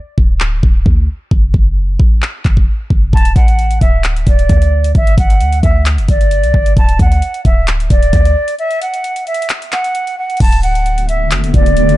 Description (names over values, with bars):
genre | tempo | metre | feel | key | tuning
hip hop, trap | 132 BPM | 4/4 | half-time | D major | A4 = 440 Hz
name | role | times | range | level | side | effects
warm 808-style bass | bass | 0.2-12.0 s | D1 to D2 | -13 LUFS | equal | none
trap drum kit | drums | 0.2-12.0 s | crash cymbal, handclaps, hi-hat, kick drum | -12 LUFS | equal | none
silver concert flute | melody | 3.1-12.0 s | D5 to A5 | -17 LUFS | right 2 dB | none
granular cloud pad | sustained chords | 11.0-12.0 s | D3 to F#4 | -16 LUFS | left 1 dB | built-in reverb
room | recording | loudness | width
digital ambience | dark, warm production, nothing above 11.0 kHz | -10 LUFS | side -16 dB against mid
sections
0.0-10.4 A section; 10.4-12.0 B section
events
break 0.0-3.1, 8.6-10.4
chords
0.0 N.C.; 3.1 D; 5.0 Gmaj7(no3); 6.8 D; 8.6 N.C.; 10.4 D6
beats
0.40 0.86 | 1.31 1.77 2.22 2.68 | 3.13 3.59 4.04 4.50 | 4.95 5.40 5.86 6.31 | 6.77 7.22 7.68 8.13 | 8.59 9.04 9.49 9.95 | 10.40 10.86 11.31 11.77